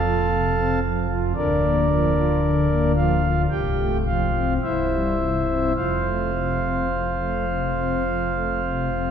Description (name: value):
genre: classical, chorale-style piece for pipe organ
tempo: 52-57 BPM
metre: 4/4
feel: rubato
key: F major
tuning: A4 = 440 Hz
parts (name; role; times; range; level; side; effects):
- pipe organ, principal; solo; 0.0-9.1 s; C1 to A5; -20 LUFS; equal; none
room: wet church reverb, RT60 3.6 s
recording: minimal, uncompressed stereo recording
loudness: -20 LUFS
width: side -8 dB against mid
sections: 0.0-9.1 A section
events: none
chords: 0.0 F; 1.4 Bb/D; 3.5 F/C; 4.6 C; 5.8 F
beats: 0.29 | 1.36 2.43 3.50 4.62 | 5.76 6.91 8.05